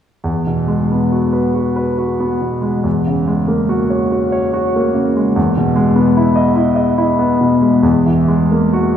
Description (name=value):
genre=classical, impressionist solo piano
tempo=64-76 BPM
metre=3/4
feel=rubato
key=E lydian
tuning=A4 = 437 Hz
part: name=warm grand piano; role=solo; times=0.2-9.0 s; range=E2 to D#5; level=-12 LUFS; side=equal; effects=none
room=wet concert hall reverb, RT60 2.2 s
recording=heard from further back in the room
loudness=-12 LUFS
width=side -9 dB against mid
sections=0.2-9.0 A section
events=none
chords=0.2 Eadd9; 2.9 F#add9/E; 5.4 Emaj7; 7.8 F#9/E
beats=| 0.23 1.12 2.00 | 2.85 3.70 4.55 | 5.37 6.17 6.98 | 7.84 8.75